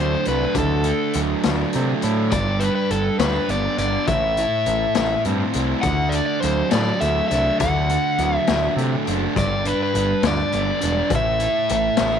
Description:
indie rock; 68 BPM (dotted quarters); 6/8; straight; A4 = 439 Hz
overdriven electric guitar; melody; 0.0-12.2 s; A4 to F#5; -22 LUFS; left 2 dB; slapback echo
fuzz guitar; riff; 0.0-12.2 s; G2 to E4; -23 LUFS; right 2 dB; distortion
growling picked electric bass; bass; 0.0-12.2 s; E1 to C3; -24 LUFS; right 1 dB; overdrive
raw garage drum kit; drums; 0.3-12.1 s; hi-hat, kick drum, snare drum; -26 LUFS; left 6 dB
studio reverb; 1960s-style stereo; -18 LUFS; side -8 dB against mid
0.0-12.2 A section
0.0 D; 2.3 G; 4.1 Am; 5.8 D; 9.4 G; 11.1 A5

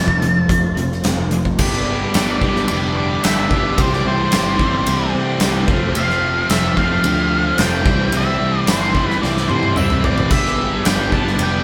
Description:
classic rock; 110 BPM; 4/4; straight; G mixolydian; A4 = 440 Hz
octave-fuzz lead guitar; melody; 0.0-11.6 s; C5 to A5; -24 LUFS; equal; distortion
mellow tonewheel organ; sustained chords; 0.0-11.6 s; G3 to C5; -33 LUFS; equal
overdriven electric guitar; riff; 0.0-11.6 s; F2 to G4; -25 LUFS; equal
overdriven semi-hollow guitar; riff; 0.0-11.6 s; F2 to G4; -24 LUFS; equal; phaser
picked electric bass; bass; 0.0-11.6 s; F1 to C3; -25 LUFS; equal
huge arena drum kit; drums; 0.1-11.5 s; crash cymbal, hi-hat, kick drum, ride cymbal, snare drum, toms; -22 LUFS; equal
tambourine; percussion; 2.1-11.0 s; -35 LUFS; equal
wet studio ambience, RT60 0.5 s; band playing live in one room; -17 LUFS; mono
0.0-1.6 A section; 1.6-11.6 B section
drum fill 9.2-10.3
0.0 F; 1.6 G6; 3.8 C6; 5.7 F; 7.9 C6; 10.3 G6

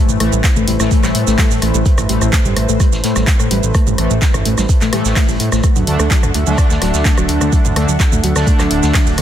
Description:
melodic techno; 127 BPM; 4/4; straight; A dorian; A4 = 439 Hz
warm analog pad; sustained chords; 0.0-9.2 s; A3 to F#5; -24 LUFS; right 1 dB; chorus, sidechain pumping
analog synth brass; stabs; 0.0-9.2 s; A2 to D4; -20 LUFS; left 1 dB; chorus, sidechain pumping, dub echo
fat analog bass; bass; 0.1-9.2 s; D1 to A2; -17 LUFS; equal; sidechain pumping
deep house drum kit; drums; 0.1-9.2 s; handclaps, hi-hat, rim click, shaker, toms; -20 LUFS; right 1 dB
soft round pluck; arpeggios; 0.2-9.2 s; F#3 to A4; -21 LUFS; left 1 dB; analog chorus, sidechain pumping, dub echo
vintage brush drum kit; drums; 0.2-9.2 s; hi-hat, snare drum; -30 LUFS; equal; high-pass filter on hats, high-pass filter on snare, high-pass filter on room
electronic kick drum; drums; 0.4-9.0 s; -13 LUFS; equal
light reverb, digital ambience; dense, heavily limited modern master; -11 LUFS; side -10 dB against mid
0.0-9.2 A section
0.0 Am; 5.6 D

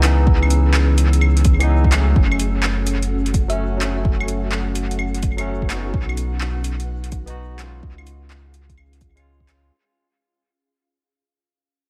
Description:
future garage; 127 BPM; 4/4; swing 66% on 16ths; F# dorian; A4 = 438 Hz
barky tine electric piano; accompaniment; 0.0-9.7 s; E3 to F#4; -28 LUFS; equal; sidechain pumping, tape echo
ethereal airy pad; sustained chords; 0.0-9.7 s; C#4 to E6; -33 LUFS; equal; ensemble chorus, built-in reverb, sidechain pumping
warm sub bass; bass; 0.0-9.7 s; F#1 to C#2; -21 LUFS; equal; sidechain pumping
deep house drum kit; drums; 0.0-9.6 s; cabasa, claves, handclaps, hi-hat; -28 LUFS; equal; overdrive, dub echo
electronic kick drum; drums; 0.3-9.5 s; -21 LUFS; equal; overdrive
thumb-piano-like synth pluck; melody; 3.5-4.0 s; E5; -33 LUFS; equal; chorus, cassette tape, tape echo
light reverb, digital ambience; echo-heavy mix, vinyl crackle; -19 LUFS; mono
0.0-9.7 A section
fade-out 2.2-9.7
0.0 C#m7; 2.2 F#m; 5.9 B; 7.8 C#

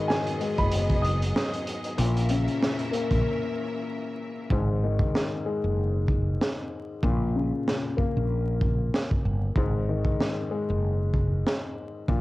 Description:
hip hop, boom-bap hip-hop; 95 BPM; 4/4; swing 57% on 16ths; G# minor; A4 = 439 Hz
warm upright piano; melody; 0.0-1.9 s; G#5 to D#6; -32 LUFS; right 1 dB; high-pass filter, low-pass filter, cassette tape
dark concert grand piano; accompaniment; 0.0-12.2 s; G#2 to A#3; -29 LUFS; left 3 dB; high-pass filter, low-pass filter
clear studio string section; sustained chords; 0.0-4.5 s; E3 to E5; -34 LUFS; right 1 dB; high-pass filter, low-pass filter
crunchy breakbeat drum kit; drums; 0.1-12.2 s; hi-hat, kick drum, snare drum; -27 LUFS; equal; cassette tape
mellow fretless electric bass; bass; 0.6-12.2 s; F#1 to A#1; -26 LUFS; equal; tube saturation
light reverb; home recording on cassette, vinyl crackle; -24 LUFS; side -18 dB against mid
0.0-4.5 A section; 4.5-12.2 B section
break 3.2-4.5; hi-hats muted 4.5-12.2
0.0 G#m7; 2.0 A#dim; 4.5 G#5; 7.0 Gdim (rootless); 9.6 G#5

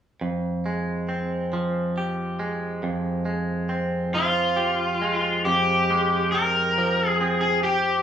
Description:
pop; 46 BPM (dotted quarters); 6/8; straight; F minor; A4 = 440 Hz
direct-recorded clean electric guitar; accompaniment; 0.2-8.0 s; F2 to G4; -25 LUFS; right 1 dB; spring reverb
overdriven slide guitar; melody; 4.1-8.0 s; F4 to Bb4; -21 LUFS; left 1 dB
wet large studio reverb, RT60 0.9 s; band playing live in one room, studio ambience; -21 LUFS; side -9 dB against mid
0.2-5.4 A section; 5.4-8.0 B section
0.2 Fmadd9

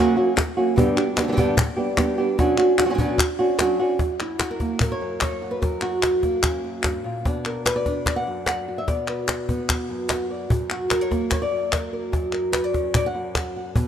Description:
flamenco; 148 BPM; 4/4; straight; A4 = 437 Hz
flamenco guitar; melody; 0.0-13.9 s; F#2 to F#5; -22 LUFS; right 1 dB; slapback echo
cajon; percussion; 0.4-13.9 s; -24 LUFS; left 1 dB
palmas hand claps; percussion; 0.4-13.6 s; -26 LUFS; left 3 dB
light reverb, studio reverb; rough home demo mix, lossy compression artefacts; -20 LUFS; side -9 dB against mid
0.0-4.0 A section; 4.0-13.9 B section
0.0 F#; 0.8 G; 2.4 Bmadd9; 4.0 F#; 7.2 Bm; 10.5 F#

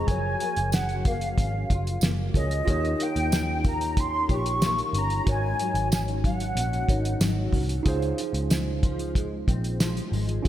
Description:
indie pop, bedroom pop; 93 BPM; 4/4; straight; Db major; A4 = 440 Hz
mellow silver concert flute; melody; 0.0-7.2 s; Eb5 to Db6; -29 LUFS; equal; ensemble chorus, slapback echo, digital delay
nylon-string guitar; accompaniment; 0.0-10.5 s; Ab2 to G4; -33 LUFS; left 4 dB; ensemble chorus, warbly pitch drift, slapback echo
tine electric piano; accompaniment; 0.0-10.5 s; F3 to Db5; -33 LUFS; right 5 dB; medium stereo tremolo, slapback echo
vintage muted picked electric bass; bass; 0.0-10.5 s; Gb1 to Eb2; -28 LUFS; equal
cloth-damped thuddy drum kit; drums; 0.1-10.5 s; hi-hat, kick drum, snare drum; -26 LUFS; equal
tambourine; percussion; 0.7-10.0 s; -38 LUFS; right 6 dB
light reverb; -23 LUFS; side -12 dB against mid
0.0-10.5 A section
0.1 Gbmaj7; 2.7 Eb7; 5.3 Ab7sus4; 7.9 Dbmaj7

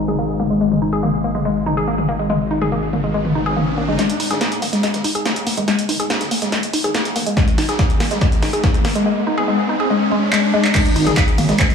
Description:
driving peak-time techno; 142 BPM; 4/4; straight; A4 = 439 Hz
woody wave-folded pluck; riff; 0.0-11.6 s; G#3 to G#4; -19 LUFS; left 1 dB; chorus, tube saturation, sidechain pumping, digital delay
growling FM bass; bass; 0.0-4.0, 11.0-11.5 s; G#1; -24 LUFS; equal; sidechain pumping
deep dark ambient pad; drone; 0.0-4.0 s; G#2 to G#3; -26 LUFS; left 3 dB; chorus, built-in reverb, sidechain pumping
downlifter and riser; sound effects; 0.0-10.7 s; -26 LUFS; left 1 dB
punchy analog drum machine; drums; 0.1-11.7 s; crash cymbal, handclaps, hi-hat, ride cymbal, snare drum, toms; -22 LUFS; equal; overdrive, high-pass filter on snare, low-pass filter on snare, sidechain pumping on hats, high-pass filter on hats, low-pass filter on hats, sidechain pumping on cymbals, high-pass filter on cymbals, low-pass filter on cymbals, sidechain pumping on toms, high-pass filter on toms, low-pass filter on toms
breakbeat sampler-style drum kit; drums; 4.0-11.7 s; hi-hat, snare drum; -28 LUFS; equal; high-pass filter on snare, sidechain pumping on hats, high-pass filter on hats, high-pass filter on room
electronic kick drum; drums; 7.4-11.7 s; -17 LUFS; equal; overdrive
moderate lush hall reverb, RT60 1.8 s, digital ambience; low-pass filter, studio ambience; -15 LUFS; side -6 dB against mid
0.0-4.0 A section; 4.0-10.7 B section; 10.7-11.7 C section
filter sweep 0.0-4.0; riser 2.2-4.0, 4.0-10.7; build-up 4.0-10.7; drum fill 4.0-9.1, 10.3-10.7; filter sweep on synth arpeggio sound 4.0-10.7; drop 10.7-11.7
0.0 G#5

